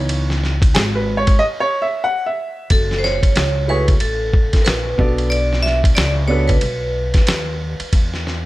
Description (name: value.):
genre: hip hop, jazz-hop.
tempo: 92 BPM.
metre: 4/4.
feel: swing 60% on 16ths.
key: F# minor.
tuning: A4 = 440 Hz.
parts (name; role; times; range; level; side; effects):
warm upright piano; accompaniment; 0.0-6.5 s; E3 to F#5; -20 LUFS; right 1 dB; none.
upright bass; bass; 0.0-8.5 s; F#1 to E2; -20 LUFS; equal; none.
lo-fi sampler-style drum kit; drums; 0.1-8.4 s; hi-hat, kick drum, ride cymbal, snare drum; -17 LUFS; equal; none.
vibraphone with hard mallets; melody; 2.7-7.6 s; A4 to E5; -22 LUFS; right 1 dB; tape echo.
room: studio reverb.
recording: none.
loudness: -15 LUFS.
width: side -17 dB against mid.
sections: 0.0-2.7 A section; 2.7-8.5 B section.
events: upright piano solo 0.0-2.7; break 1.4-2.7.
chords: 0.0 C#m9; 2.7 F#m; 5.0 Bm9; 7.9 N.C..